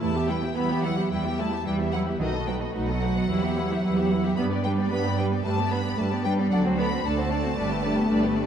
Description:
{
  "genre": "quick classical-period movement for string orchestra",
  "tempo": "112 BPM",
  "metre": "4/4",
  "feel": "rubato",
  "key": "E minor",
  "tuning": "A4 = 440 Hz",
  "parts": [
    { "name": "rich studio violin section", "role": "melody", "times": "0.0-8.5 s", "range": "D#5 to B5", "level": "-34 LUFS", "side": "left 5 dB", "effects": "none" },
    { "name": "rich studio violin section", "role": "second line", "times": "0.0-8.5 s", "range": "E4 to E5", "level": "-32 LUFS", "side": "left 3 dB", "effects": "none" },
    { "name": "warm studio viola section", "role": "accompaniment", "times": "0.0-8.5 s", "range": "G3 to G4", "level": "-29 LUFS", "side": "right 1 dB", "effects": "none" },
    { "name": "rich studio cello section", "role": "bass", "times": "0.0-8.5 s", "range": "D#3 to B3", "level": "-27 LUFS", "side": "right 1 dB", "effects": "none" },
    { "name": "rich studio double bass section", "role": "bass", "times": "0.0-8.5 s", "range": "G1 to G2", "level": "-30 LUFS", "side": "right 4 dB", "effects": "none" }
  ],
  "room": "moderate scoring stage reverb, RT60 1.8 s",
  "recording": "dark, warm production",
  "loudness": "-23 LUFS",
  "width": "side -8 dB against mid",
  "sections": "0.0-8.5 A section",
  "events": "none",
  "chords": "0.0 Em; 2.2 B7; 3.3 Em; 4.4 G; 6.5 D7; 7.6 G"
}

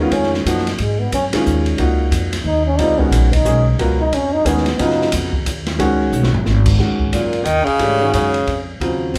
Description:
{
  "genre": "modal jazz",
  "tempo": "180 BPM",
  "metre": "3/4",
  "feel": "swing 62% on 8ths",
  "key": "unclear",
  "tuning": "A4 = 440 Hz",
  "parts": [
    { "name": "breathy trombone", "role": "second line", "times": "0.0-9.2 s", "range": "Ab3 to Eb4", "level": "-23 LUFS", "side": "equal", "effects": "none" },
    { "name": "clear baby grand piano", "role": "accompaniment", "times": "0.0-9.2 s", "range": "Db3 to Bb4", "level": "-22 LUFS", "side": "equal", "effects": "none" },
    { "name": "upright bass", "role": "bass", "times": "0.0-9.2 s", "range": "Gb1 to Ab2", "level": "-21 LUFS", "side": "equal", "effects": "none" },
    { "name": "open jazz drum kit", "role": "drums", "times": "0.1-9.2 s", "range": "crash cymbal, hi-hat, kick drum, ride cymbal, snare drum, toms", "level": "-25 LUFS", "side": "equal", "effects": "none" },
    { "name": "clear tenor saxophone", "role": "melody", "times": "7.1-9.2 s", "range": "Bb2 to Eb3", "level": "-19 LUFS", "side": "equal", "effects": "none" }
  ],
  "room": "moderate large studio reverb, RT60 1.1 s",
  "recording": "band playing live in one room",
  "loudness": "-17 LUFS",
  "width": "mono",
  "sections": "0.0-6.8 A section; 6.8-9.2 B section",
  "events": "trombone solo 0.0-6.8; drum fill 6.1-6.5",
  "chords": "0.0 Ab9sus4; 2.8 Db9sus4; 6.8 Ab9sus4"
}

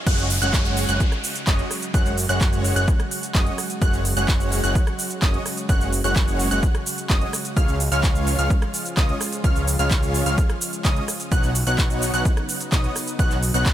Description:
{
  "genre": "EDM, festival progressive house",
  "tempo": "128 BPM",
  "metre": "4/4",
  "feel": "straight",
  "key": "unclear",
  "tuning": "A4 = 440 Hz",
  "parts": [
    { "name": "lush unison pad", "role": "sustained chords", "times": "0.7-13.7 s", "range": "C#3 to F#4", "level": "-33 LUFS", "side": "right 1 dB", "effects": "chorus, sidechain pumping" },
    { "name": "wide unison pluck", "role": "arpeggios", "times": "0.1-13.7 s", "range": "D#6 to F#6", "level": "-29 LUFS", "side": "right 1 dB", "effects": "sidechain pumping, digital delay" },
    { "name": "dense compressed supersaw", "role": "riff", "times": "0.1-13.7 s", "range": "G#3 to F#5", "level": "-28 LUFS", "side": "equal", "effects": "sidechain pumping, digital delay" },
    { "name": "fat analog bass", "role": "bass", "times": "0.1-13.7 s", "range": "F#1 to C#2", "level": "-24 LUFS", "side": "equal", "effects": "sidechain pumping" },
    { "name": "big-room dance drum kit", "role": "drums", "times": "0.1-13.7 s", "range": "crash cymbal, handclaps, hi-hat, rim click, shaker", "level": "-27 LUFS", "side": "right 2 dB", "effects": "none" },
    { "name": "electronic kick drum", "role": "drums", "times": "0.1-13.7 s", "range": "none", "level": "-20 LUFS", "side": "equal", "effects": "high-pass filter on kick, high-pass filter on room" },
    { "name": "downlifter", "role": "sound effects", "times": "0.1-3.8 s", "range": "none", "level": "-31 LUFS", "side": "equal", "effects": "none" }
  ],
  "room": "little or no reverb",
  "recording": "none",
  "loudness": "-19 LUFS",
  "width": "side -12 dB against mid",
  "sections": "0.1-13.7 A section",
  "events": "drop 0.1-13.7",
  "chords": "0.1 F#sus2; 7.6 C#; 11.3 Badd9"
}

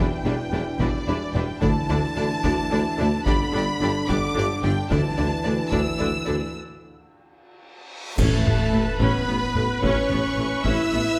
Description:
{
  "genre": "cinematic, epic orchestral film score",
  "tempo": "73 BPM (dotted quarters)",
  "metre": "6/8",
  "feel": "straight",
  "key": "A major from 8.2 s",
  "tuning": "A4 = 440 Hz",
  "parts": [
    { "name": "warm symphonic violin section", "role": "melody", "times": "0.0-11.2 s", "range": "D5 to E6", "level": "-32 LUFS", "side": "equal", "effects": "none" },
    { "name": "rich symphonic violin section", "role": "second line", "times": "0.0-11.2 s", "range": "E4 to E5", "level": "-35 LUFS", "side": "equal", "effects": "none" },
    { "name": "clear symphonic viola section", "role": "accompaniment", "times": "0.0-11.2 s", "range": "D3 to B4", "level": "-32 LUFS", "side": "equal", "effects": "none" },
    { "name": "mellow French horn section", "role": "sustained chords", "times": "0.0-11.2 s", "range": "D3 to E4", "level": "-31 LUFS", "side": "equal", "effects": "none" },
    { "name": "clear tuba", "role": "bass", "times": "0.0-11.0 s", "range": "E1 to D2", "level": "-33 LUFS", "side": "equal", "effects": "none" },
    { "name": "rich symphonic cello section", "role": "bass", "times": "0.0-11.0 s", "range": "D2 to A2", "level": "-32 LUFS", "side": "equal", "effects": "none" },
    { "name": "warm symphonic double bass section", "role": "bass", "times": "0.0-11.0 s", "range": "E1 to D2", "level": "-32 LUFS", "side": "equal", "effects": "none" },
    { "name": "taiko ensemble", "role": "drums", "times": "0.8-11.2 s", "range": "none", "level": "-31 LUFS", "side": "equal", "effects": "none" },
    { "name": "timpani", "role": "percussion", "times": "1.6-2.4, 4.9-5.7, 8.2-9.0 s", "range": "A2 to D3", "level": "-32 LUFS", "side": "equal", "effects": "none" },
    { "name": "cymbal swell, clash cymbals and concert bass drum", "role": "percussion", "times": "4.9-9.2 s", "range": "none", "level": "-34 LUFS", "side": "equal", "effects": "none" },
    { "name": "reverse cymbal and impact", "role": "sound effects", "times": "7.7-9.8 s", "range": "none", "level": "-39 LUFS", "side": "equal", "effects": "none" }
  ],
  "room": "moderate scoring stage reverb, RT60 1.6 s",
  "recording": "none",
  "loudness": "-23 LUFS",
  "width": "mono",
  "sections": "0.0-8.2 A section; 8.2-11.2 B section",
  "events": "break 6.5-8.2; reverse cymbal 7.7-8.2; band accent 8.2-8.7; impact 8.2-9.8",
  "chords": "0.0 Em7; 1.6 Dsus2; 3.3 G; 4.9 Dsus2; 6.5 N.C.; 8.2 Aadd9"
}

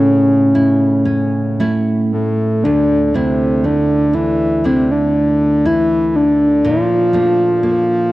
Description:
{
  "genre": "celtic folk, Celtic slow air",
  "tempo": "60 BPM",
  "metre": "4/4",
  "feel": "rubato",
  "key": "D minor",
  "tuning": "A4 = 439 Hz",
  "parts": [
    { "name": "breathy flute-like synth lead", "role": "melody", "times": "0.0-8.1 s", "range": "A3 to F4", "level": "-13 LUFS", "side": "equal", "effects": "chorus" },
    { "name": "nylon-string guitar", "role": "accompaniment", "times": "0.0-8.1 s", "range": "D2 to E4", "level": "-18 LUFS", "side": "right 1 dB", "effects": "none" }
  ],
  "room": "light reverb",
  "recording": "worn, warbling old tape, cassette tape, warbly pitch drift",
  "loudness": "-12 LUFS",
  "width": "side -17 dB against mid",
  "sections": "0.0-2.6 A section; 2.6-8.1 B section",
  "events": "none",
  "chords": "0.0 A; 2.6 Dsus2; 6.7 Bbmaj7"
}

